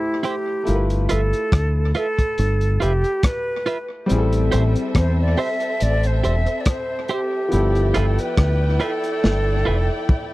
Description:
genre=lovers rock reggae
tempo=70 BPM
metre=4/4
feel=swing 55% on 16ths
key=unclear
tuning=A4 = 437 Hz
part: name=hollow concert flute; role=melody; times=0.0-10.3 s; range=E4 to E5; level=-24 LUFS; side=right 1 dB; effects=tape echo
part: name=clear grand piano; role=accompaniment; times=0.0-10.3 s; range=F3 to C5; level=-27 LUFS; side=left 2 dB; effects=tape echo
part: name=twelve-string electric guitar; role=stabs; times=0.2-9.8 s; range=E4 to E5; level=-23 LUFS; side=right 4 dB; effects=vibrato effect
part: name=crunchy breakbeat drum kit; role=drums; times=0.2-10.3 s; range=hi-hat, kick drum, rim click, snare drum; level=-21 LUFS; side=equal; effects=none
part: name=deep dub fingered electric bass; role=bass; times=0.7-9.9 s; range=E1 to E2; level=-19 LUFS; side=equal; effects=none
part: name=warm studio violin section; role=second line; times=4.1-10.3 s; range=C4 to G5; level=-29 LUFS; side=left 2 dB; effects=none
room=little or no reverb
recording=dry, close 1970s-style studio recording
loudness=-18 LUFS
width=side -18 dB against mid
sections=0.0-10.3 A section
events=drum fill 9.2-10.3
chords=0.0 Am7; 0.7 G13; 4.1 Am7; 7.5 G13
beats=| 0.67 1.52 2.38 3.24 | 4.09 4.95 5.81 6.66 | 7.52 8.37 9.23 10.09

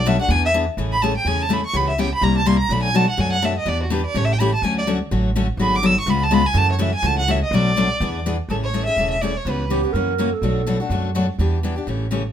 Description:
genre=acoustic string swing (jazz manouche)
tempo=249 BPM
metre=4/4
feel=swing 57% on 8ths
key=A major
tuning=A4 = 440 Hz
part: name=rich violin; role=melody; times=0.0-9.7 s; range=F#4 to E6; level=-21 LUFS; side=right 2 dB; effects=none
part: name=upright bass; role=bass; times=0.0-12.3 s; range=E1 to F#2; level=-22 LUFS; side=right 1 dB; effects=none
part: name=picked steel-string acoustic guitar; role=accompaniment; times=0.1-12.2 s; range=B2 to G#4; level=-21 LUFS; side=left 4 dB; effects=none
part: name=dark clarinet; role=second line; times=9.7-10.8 s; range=G4 to A#4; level=-23 LUFS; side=right 8 dB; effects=none
room=light reverb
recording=minimal, uncompressed stereo recording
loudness=-17 LUFS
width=side -9 dB against mid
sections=0.8-8.5 A section; 8.5-12.3 B section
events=violin solo 0.0-8.5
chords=0.3 E7; 0.8 Amaj7; 1.7 C#m7b5; 2.2 C7; 2.7 Bm7; 3.7 Em7; 4.1 A7; 4.6 Dmaj7; 5.6 G#m7b5; 6.1 C#7; 6.6 F#m7; 7.5 Bm7; 8.0 E7; 8.5 Amaj7; 9.5 C#m7b5; 9.9 F#7; 10.4 Bm7; 11.4 Em7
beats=0.05 0.29 0.53 | 0.77 1.01 1.25 1.49 | 1.73 1.98 2.22 2.46 | 2.70 2.94 3.18 3.42 | 3.66 3.90 4.14 4.39 | 4.63 4.87 5.11 5.35 | 5.59 5.83 6.07 6.32 | 6.56 6.80 7.04 7.28 | 7.52 7.76 8.00 8.24 | 8.49 8.73 8.97 9.21 | 9.45 9.70 9.94 10.18 | 10.42 10.66 10.90 11.15 | 11.39 11.63 11.87 12.12

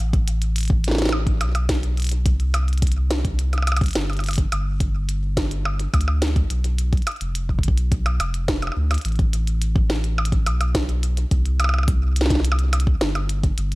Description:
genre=IDM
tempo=106 BPM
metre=4/4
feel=straight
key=A minor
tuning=A4 = 438 Hz
part: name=warm sub bass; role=bass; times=0.0-13.8 s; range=F1 to D2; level=-21 LUFS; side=equal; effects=none
part: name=electronic kick drum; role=drums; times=0.1-13.5 s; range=none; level=-21 LUFS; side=equal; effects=none
part: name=glitchy drum kit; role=drums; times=0.1-13.8 s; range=hi-hat, percussion blips, snare drum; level=-25 LUFS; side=right 1 dB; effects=digital delay
room=digital ambience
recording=none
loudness=-19 LUFS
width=side -21 dB against mid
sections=0.0-13.8 A section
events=none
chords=none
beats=0.56 1.12 1.69 | 2.26 2.82 3.39 3.96 | 4.52 5.09 5.65 6.22 | 6.79 7.35 7.92 8.48 | 9.05 9.62 10.18 10.75 | 11.31 11.88 12.45 13.01 | 13.58

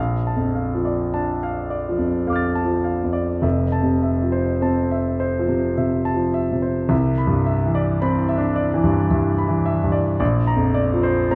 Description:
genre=classical, impressionist solo piano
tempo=50-56 BPM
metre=3/4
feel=rubato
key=unclear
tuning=A4 = 440 Hz
part: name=warm grand piano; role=solo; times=0.0-11.3 s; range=F1 to A6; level=-20 LUFS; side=equal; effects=none
room=moderate recital hall reverb, RT60 1.8 s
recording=dark, warm production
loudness=-21 LUFS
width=mono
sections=0.0-11.3 A section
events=none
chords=0.0 Bbmaj7; 3.4 Fmaj7; 6.9 Cmaj9; 10.2 Bbadd9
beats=1.16 2.29 | 3.44 4.63 5.79 | 6.92 8.02 9.11 | 10.21 11.32

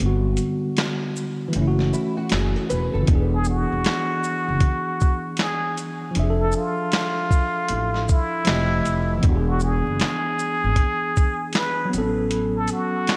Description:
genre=lo-fi hip hop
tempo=78 BPM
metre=4/4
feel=swing 63% on 16ths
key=unclear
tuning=A4 = 440 Hz
part: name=tine electric piano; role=accompaniment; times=0.0-13.2 s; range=D3 to E5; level=-28 LUFS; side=equal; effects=cassette tape, low-pass filter
part: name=upright bass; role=bass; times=0.0-12.7 s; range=E1 to A1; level=-26 LUFS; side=equal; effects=none
part: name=lo-fi sampler-style drum kit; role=drums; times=0.0-13.2 s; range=handclaps, hi-hat, kick drum, shaker, snare drum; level=-25 LUFS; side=equal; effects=none
part: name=nylon-string guitar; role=second line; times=1.9-3.3 s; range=E4 to B4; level=-34 LUFS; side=equal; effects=analog chorus, low-pass filter, diffuse ambient delay
part: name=trumpet with plunger mute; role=melody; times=3.3-13.2 s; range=E4 to B4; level=-28 LUFS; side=equal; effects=low-pass filter
room=moderate plate reverb, RT60 2.8 s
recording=dreamy mix soaked in reverb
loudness=-22 LUFS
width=mono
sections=0.0-3.1 A section; 3.1-13.2 B section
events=break 0.0-3.1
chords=0.0 Gmaj7; 1.5 F#m7; 3.1 E7; 6.2 Dmadd9/F; 8.5 F9; 9.2 E7; 11.9 A69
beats=| 0.00 0.77 1.54 2.31 | 3.08 3.85 4.62 5.39 | 6.16 6.93 7.70 8.46 | 9.23 10.00 10.77 11.54 | 12.31 13.08

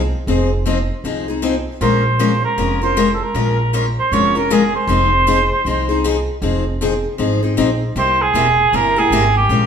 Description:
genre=acoustic string swing (jazz manouche)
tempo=156 BPM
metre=4/4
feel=swing 62% on 8ths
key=F minor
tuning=A4 = 442 Hz
part: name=upright bass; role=bass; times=0.0-9.7 s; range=E1 to C2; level=-20 LUFS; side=right 1 dB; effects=none
part: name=picked steel-string acoustic guitar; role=accompaniment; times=0.3-9.7 s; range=C3 to Bb4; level=-18 LUFS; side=left 4 dB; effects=none
part: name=mellow cor anglais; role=melody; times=1.8-9.7 s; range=G4 to Db5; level=-16 LUFS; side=right 2 dB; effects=none
room=wet large studio reverb, RT60 1.4 s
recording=band playing live in one room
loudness=-14 LUFS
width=side -7 dB against mid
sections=0.0-9.7 A section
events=none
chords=0.0 Fm7; 1.8 Bbm7; 4.9 Fm7; 8.0 C7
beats=| 0.28 0.66 1.04 1.43 | 1.81 2.20 2.58 2.97 | 3.35 3.74 4.12 4.50 | 4.89 5.27 5.66 6.04 | 6.42 6.81 7.19 7.58 | 7.96 8.35 8.73 9.12 | 9.50

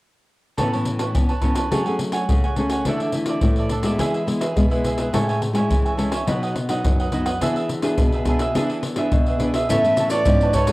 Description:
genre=samba and choro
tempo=105 BPM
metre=4/4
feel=straight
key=A major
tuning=A4 = 440 Hz
part: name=cavaquinho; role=accompaniment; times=0.6-10.7 s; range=D4 to A5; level=-26 LUFS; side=right 3 dB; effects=cassette tape
part: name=nylon-string guitar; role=accompaniment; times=0.6-10.7 s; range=F#2 to G#4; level=-23 LUFS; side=left 1 dB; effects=cassette tape
part: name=surdo, pandeiro and maracas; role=percussion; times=0.6-10.7 s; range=none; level=-22 LUFS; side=equal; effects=none
part: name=warm soprano saxophone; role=melody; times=9.7-10.7 s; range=C#5 to E5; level=-18 LUFS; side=right 1 dB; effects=cassette tape
part: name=nylon-string guitar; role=bass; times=9.7-10.7 s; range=G#2 to A2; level=-23 LUFS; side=equal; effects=none
room=wet spring reverb, RT60 1.5 s, small room ambience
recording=home recording on cassette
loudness=-18 LUFS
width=side -19 dB against mid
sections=0.6-9.7 A section; 9.7-10.7 B section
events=none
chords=0.6 Aadd9; 1.7 F#madd9; 2.9 Dsus2; 4.0 E; 5.1 Amaj7; 6.3 B; 7.4 E7; 9.7 Aadd9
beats=| 0.58 1.15 1.72 2.29 | 2.86 3.43 4.00 4.57 | 5.13 5.70 6.27 6.84 | 7.41 7.98 8.55 9.12 | 9.70 10.27

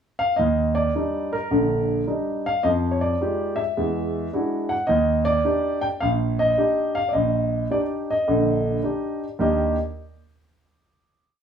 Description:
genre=solo jazz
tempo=106 BPM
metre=4/4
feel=swing 68% on 8ths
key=Eb major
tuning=A4 = 440 Hz
part: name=warm grand piano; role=solo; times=0.2-9.8 s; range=Bb1 to G5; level=-20 LUFS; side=equal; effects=none
room=wet studio reverb, RT60 0.7 s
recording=band playing live in one room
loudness=-20 LUFS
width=side -8 dB against mid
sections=0.0-0.4 pickup bar; 0.4-9.4 A section; 9.4-11.4 final chord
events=none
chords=0.4 Ebmaj7; 2.6 Fm9; 3.8 E9; 4.9 Ebmaj7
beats=| 0.39 0.95 1.51 2.07 | 2.63 3.19 3.76 4.32 | 4.88 5.45 6.01 6.58 | 7.14 7.71 8.28 8.84 | 9.41

